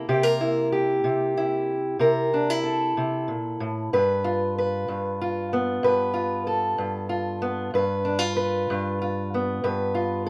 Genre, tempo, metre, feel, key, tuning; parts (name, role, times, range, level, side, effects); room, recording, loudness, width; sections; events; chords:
blues; 63 BPM (dotted quarters); 12/8; straight; G mixolydian; A4 = 440 Hz
fingerpicked steel-string acoustic guitar; solo; 0.0-10.3 s; G2 to B4; -25 LUFS; equal
light reverb; rough home demo mix; -25 LUFS; mono
0.0-10.3 A section
0.0 C7; 3.9 G7